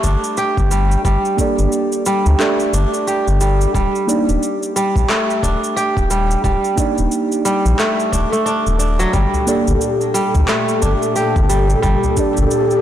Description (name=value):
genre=organic downtempo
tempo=89 BPM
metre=4/4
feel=swing 60% on 16ths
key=G minor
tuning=A4 = 440 Hz
part: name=kora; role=arpeggios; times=0.0-12.8 s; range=F#3 to G4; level=-18 LUFS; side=equal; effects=digital delay
part: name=round analog bass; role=bass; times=0.0-12.5 s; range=Eb1 to D2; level=-16 LUFS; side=equal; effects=sidechain pumping
part: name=electronic cabasa and handclaps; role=drums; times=0.0-12.8 s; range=none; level=-24 LUFS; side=equal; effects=overdrive
part: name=electronic kick drum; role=drums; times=0.0-12.3 s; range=none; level=-21 LUFS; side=left 1 dB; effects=none
part: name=muted felt-like synth keys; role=accompaniment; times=1.4-12.8 s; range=Bb3 to D5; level=-20 LUFS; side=right 3 dB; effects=chorus, sidechain pumping, low-pass filter, digital delay
part: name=airy breathy pad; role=sustained chords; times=9.3-12.8 s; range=Bb2 to A4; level=-19 LUFS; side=left 1 dB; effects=chorus, sidechain pumping
part: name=udu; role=percussion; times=9.3-12.5 s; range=none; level=-24 LUFS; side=right 1 dB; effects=none
room=light reverb, digital ambience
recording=blown-out, overdriven recording, overdrive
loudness=-14 LUFS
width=side -11 dB against mid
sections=0.0-12.8 A section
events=none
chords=0.0 Gmadd9; 3.7 Ebmaj7; 9.1 Gmadd9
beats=0.38 | 1.05 1.72 2.40 3.07 | 3.75 4.42 5.09 5.77 | 6.44 7.12 7.79 8.46 | 9.14 9.81 10.49 11.16 | 11.84 12.51